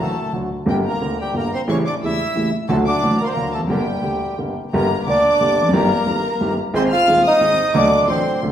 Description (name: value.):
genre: tango.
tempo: 178 BPM.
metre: 3/4.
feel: rubato.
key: G harmonic minor.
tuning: A4 = 440 Hz.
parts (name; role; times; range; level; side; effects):
bandoneon; melody; 0.0-8.4 s; G3 to F5; -19 LUFS; equal; none.
clear studio violin section; second line; 0.0-8.4 s; G5 to F6; -26 LUFS; left 3 dB; none.
warm grand piano; accompaniment; 0.0-8.5 s; Eb1 to A4; -20 LUFS; equal; none.
room: wet recital hall reverb, RT60 1.4 s.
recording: recorded in a church or concert hall.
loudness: -16 LUFS.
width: side -10 dB against mid.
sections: 0.0-4.7 A section; 4.7-8.5 B section.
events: none.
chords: 0.0 D; 0.7 Gm; 1.7 A7; 2.7 D; 3.7 Gm; 5.7 Eb/G; 6.7 Ab; 7.7 D.